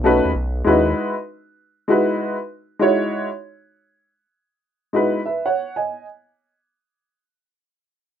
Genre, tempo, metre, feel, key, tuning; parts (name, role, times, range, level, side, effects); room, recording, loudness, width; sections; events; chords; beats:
hip hop, jazz-hop; 98 BPM; 4/4; swing 64% on 16ths; E major; A4 = 441 Hz
warm upright piano; accompaniment; 0.0-6.1 s; G#3 to G#5; -17 LUFS; equal
fat analog bass; bass; 0.0-0.9 s; B1 to D#2; -22 LUFS; equal
light reverb; rough home demo mix; -18 LUFS; side -9 dB against mid
0.0-5.9 A section
0.0 B9; 1.0 Emaj9
0.36 | 0.97 1.58 2.19 2.81 | 3.42 4.03 4.64 5.25